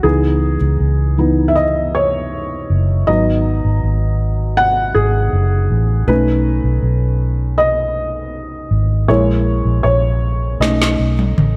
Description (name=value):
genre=pop ballad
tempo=80 BPM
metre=4/4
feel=straight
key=C# minor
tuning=A4 = 439 Hz
part: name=felt-muted upright piano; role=accompaniment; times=0.0-11.6 s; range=E3 to F#5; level=-19 LUFS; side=equal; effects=none
part: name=vintage muted fingered electric bass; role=bass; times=0.0-11.6 s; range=F#1 to C#2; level=-18 LUFS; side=equal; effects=none
part: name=smooth R&B drum kit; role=drums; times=10.6-11.6 s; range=snare drum, toms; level=-20 LUFS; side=equal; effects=none
room=light reverb, digital ambience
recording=none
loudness=-16 LUFS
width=mono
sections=0.0-11.6 A section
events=felt piano solo 0.0-11.6; drum fill 10.6-11.6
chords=0.0 C#m7; 3.1 G#m7; 6.1 B7; 9.1 A#m7b5; 10.6 B7